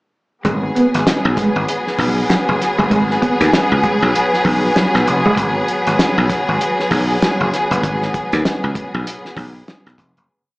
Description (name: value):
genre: funk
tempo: 98 BPM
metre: 4/4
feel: swing 60% on 16ths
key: G# minor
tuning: A4 = 439 Hz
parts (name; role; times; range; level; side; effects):
- clear studio string section; sustained chords; 0.4-10.2 s; F#3 to G#4; -18 LUFS; equal; none
- dry thumbed slap bass; bass; 0.4-10.3 s; E#1 to D#2; -17 LUFS; equal; none
- damped 70s drum kit; drums; 0.4-10.3 s; hi-hat, kick drum, snare drum; -20 LUFS; equal; slapback echo
- mellow electric guitar; riff; 0.5-5.3 s; F#3 to B3; -18 LUFS; right 1 dB; tremolo, slapback echo
room: moderate club reverb, RT60 0.8 s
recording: live gig heard through the venue's PA, club reverb, small speaker sound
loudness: -14 LUFS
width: side -23 dB against mid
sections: 0.4-10.3 A section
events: break 5.4-10.3; fade-out 7.8-10.3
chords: 0.4 G#m7